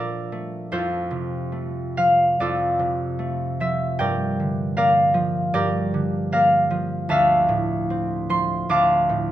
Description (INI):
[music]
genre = classical, solo harp piece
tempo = 76 BPM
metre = 4/4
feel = rubato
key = F major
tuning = A4 = 441 Hz
[part]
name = concert harp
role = solo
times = 0.0-9.3 s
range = D2 to D6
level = -19 LUFS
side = equal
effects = none
[sound]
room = light reverb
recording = none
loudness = -19 LUFS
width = side -12 dB against mid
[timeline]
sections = 0.0-9.3 A section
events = none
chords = 0.0 Bbmaj9; 0.7 F; 4.0 Gm7; 7.1 Dm9